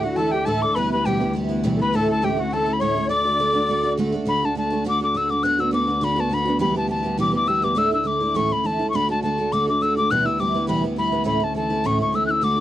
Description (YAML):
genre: celtic folk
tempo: 206 BPM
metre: 4/4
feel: swing 54% on 8ths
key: D major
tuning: A4 = 436 Hz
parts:
  - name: mellow wooden whistle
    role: melody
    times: 0.0-12.6 s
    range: F#5 to F#6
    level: -22 LUFS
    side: left 2 dB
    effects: none
  - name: musette accordion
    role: second line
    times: 0.0-3.9 s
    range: F#4 to D5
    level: -26 LUFS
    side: left 3 dB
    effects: none
  - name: picked twelve-string acoustic guitar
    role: accompaniment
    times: 0.0-12.6 s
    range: E2 to G4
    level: -23 LUFS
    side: right 2 dB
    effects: none
  - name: warm cello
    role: drone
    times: 0.0-12.6 s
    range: D2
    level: -28 LUFS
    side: left 2 dB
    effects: stereo widening
room: light reverb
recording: dark, warm production, vinyl crackle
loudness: -19 LUFS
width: side -12 dB against mid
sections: 0.0-4.3 A section; 4.3-12.6 B section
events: none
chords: 0.0 Asus4; 0.8 Em; 1.9 A; 3.1 D; 5.4 Bm/D; 6.6 Em; 7.8 Asus4; 8.4 A; 8.9 D; 10.1 Em; 11.3 A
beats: 0.18 0.48 | 0.77 1.06 1.35 1.65 | 1.94 2.23 2.52 2.81 | 3.10 3.40 3.69 3.98 | 4.27 4.56 4.85 5.15 | 5.44 5.73 6.02 6.31 | 6.60 6.89 7.19 7.48 | 7.77 8.06 8.35 8.64 | 8.93 9.22 9.52 9.81 | 10.10 10.39 10.68 10.97 | 11.27 11.56 11.85 12.14 | 12.43